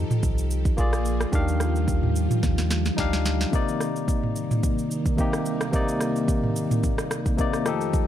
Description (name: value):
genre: amapiano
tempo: 109 BPM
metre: 4/4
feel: swing 55% on 16ths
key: C dorian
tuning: A4 = 440 Hz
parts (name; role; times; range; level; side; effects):
- barky tine electric piano; accompaniment; 0.0-8.1 s; C3 to F5; -28 LUFS; moving between left 9 dB and left 1 dB; auto-pan
- string machine, violas; sustained chords; 0.0-8.1 s; C2 to A4; -29 LUFS; right 1 dB; ensemble chorus
- warm sub bass; bass; 0.0-3.5 s; Bb1 to Eb2; -25 LUFS; equal; none
- afro-pop drum kit; drums; 0.1-8.1 s; kick drum, rim click, shaker, snare drum, toms; -25 LUFS; right 1 dB; none
room: little or no reverb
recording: dark, warm production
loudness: -22 LUFS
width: side -11 dB against mid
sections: 0.0-8.1 A section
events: drum fill 2.4-3.5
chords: 0.0 F9; 0.8 Bb7; 1.3 Ebmaj9; 3.5 Cm9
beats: 0.23 0.78 | 1.33 1.88 2.43 2.98 | 3.53 4.08 4.63 5.18 | 5.73 6.28 6.83 7.38 | 7.94